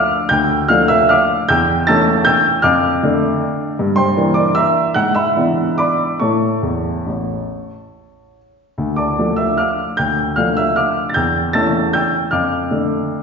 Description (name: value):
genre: classical, piano waltz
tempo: 133-164 BPM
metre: 3/4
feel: rubato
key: D minor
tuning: A4 = 444 Hz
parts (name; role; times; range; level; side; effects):
- warm upright piano; solo; 0.0-13.2 s; A1 to A6; -14 LUFS; equal; none
room: wet recital hall reverb, RT60 1.5 s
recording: heard from further back in the room, nothing above 7.5 kHz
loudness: -14 LUFS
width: side -5 dB against mid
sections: 0.0-13.2 A section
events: none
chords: 0.0 Dm; 1.5 A7/E; 2.6 Dm/F; 3.8 Em7b5/G; 5.0 E7/G#; 6.2 A; 8.8 Dm; 11.2 A7/E; 12.3 Dm/F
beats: | 0.31 0.70 1.10 | 1.49 1.88 2.26 | 2.64 3.02 3.41 | 3.79 4.17 4.57 | 4.96 5.37 5.79 | 6.21 6.62 7.06 | 7.50 7.93 8.36 | 8.78 9.17 9.58 | 9.97 10.36 10.76 | 11.15 11.54 11.94 | 12.32 12.70 13.09